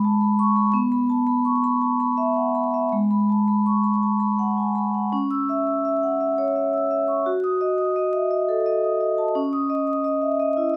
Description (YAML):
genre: classical, contemporary piece for solo vibraphone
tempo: 56 BPM (dotted quarters)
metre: 6/8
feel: uneven beats, rubato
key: C# minor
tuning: A4 = 439 Hz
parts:
  - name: vibraphone with medium hard mallets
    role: solo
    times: 0.0-10.8 s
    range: G#3 to E6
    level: -22 LUFS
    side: equal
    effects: none
room: moderate recital hall reverb, RT60 1.4 s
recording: close, detailed microphones, vinyl crackle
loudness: -22 LUFS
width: mono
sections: 0.0-5.1 A section; 5.1-10.8 B section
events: none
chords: 0.0 G#m; 0.7 B9sus4; 2.9 G#m7; 5.1 C#m; 7.3 F#m6; 9.4 C#madd9